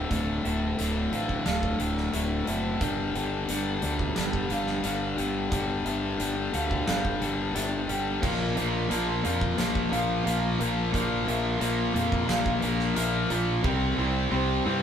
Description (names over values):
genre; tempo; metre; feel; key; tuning
post-rock; 89 BPM; 4/4; straight; unclear; A4 = 440 Hz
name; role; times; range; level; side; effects
electric guitar through a small old amp; arpeggios; 0.0-14.8 s; D2 to Bb4; -38 LUFS; right 2 dB; none
semi-hollow electric guitar; arpeggios; 0.0-14.8 s; Bb4 to F5; -37 LUFS; right 2 dB; none
cranked stack guitar; riff; 0.0-14.8 s; D2 to C4; -27 LUFS; left 3 dB; overdrive
fuzz fingered electric bass; bass; 0.0-14.8 s; D1 to G2; -32 LUFS; right 1 dB; overdrive
huge arena drum kit; drums; 0.1-13.8 s; crash cymbal, hi-hat, kick drum, snare drum; -33 LUFS; right 2 dB; none
tight distorted guitar; riff; 8.2-14.8 s; Bb2 to C4; -32 LUFS; right 6 dB; distortion
room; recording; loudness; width
moderate studio reverb, RT60 0.5 s; band playing live in one room; -25 LUFS; side -8 dB against mid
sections
0.0-14.8 A section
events
build-up 0.0-14.8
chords
0.0 Dmadd9; 2.8 Gm7; 8.2 Bb; 13.6 C7